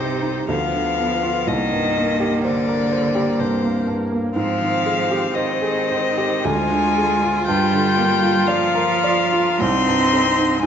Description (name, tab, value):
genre	classical, slow romantic movement for piano quartet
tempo	50-64 BPM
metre	3/4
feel	rubato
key	unclear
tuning	A4 = 440 Hz
part	dark violin	melody	0.0-10.7 s	C5 to C6	-21 LUFS	left 7 dB	none
part	clear cello	second line	0.0-10.7 s	C3 to C4	-24 LUFS	right 5 dB	none
part	clear grand piano	accompaniment	0.0-10.7 s	C2 to D5	-22 LUFS	right 1 dB	none
part	rich viola	accompaniment	0.0-10.7 s	Bb3 to F4	-23 LUFS	right 2 dB	none
room	wet recital hall reverb, RT60 1.8 s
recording	nothing above 7.8 kHz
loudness	-17 LUFS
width	side -8 dB against mid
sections	0.0-10.7 A section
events	none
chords	0.5 Bdim/D; 1.5 Cm7; 4.4 Abmaj7; 6.4 Ddim; 7.5 Gm7; 9.6 Cm